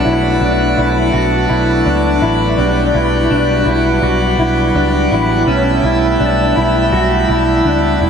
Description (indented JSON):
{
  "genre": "dream pop",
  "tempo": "83 BPM",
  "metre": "4/4",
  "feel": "straight",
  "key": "B minor",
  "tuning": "A4 = 440 Hz",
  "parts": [
    { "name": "pipe organ, plenum", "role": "sustained chords", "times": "0.0-8.1 s", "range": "F#3 to F#4", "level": "-15 LUFS", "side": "right 1 dB", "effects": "none" },
    { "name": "mellow electric guitar", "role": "arpeggios", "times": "0.0-8.1 s", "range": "C#4 to F#4", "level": "-15 LUFS", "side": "left 2 dB", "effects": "ensemble chorus, tape echo" },
    { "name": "vintage muted picked electric bass", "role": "bass", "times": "0.1-8.1 s", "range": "E1 to C#2", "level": "-18 LUFS", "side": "equal", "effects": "none" }
  ],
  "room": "wet huge ambient reverb, RT60 7.7 s",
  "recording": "dreamy mix soaked in reverb",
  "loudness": "-11 LUFS",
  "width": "side -7 dB against mid",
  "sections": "0.0-8.1 A section",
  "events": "none",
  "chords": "0.0 Bm7; 2.6 Gmaj7/B; 5.5 A9/B"
}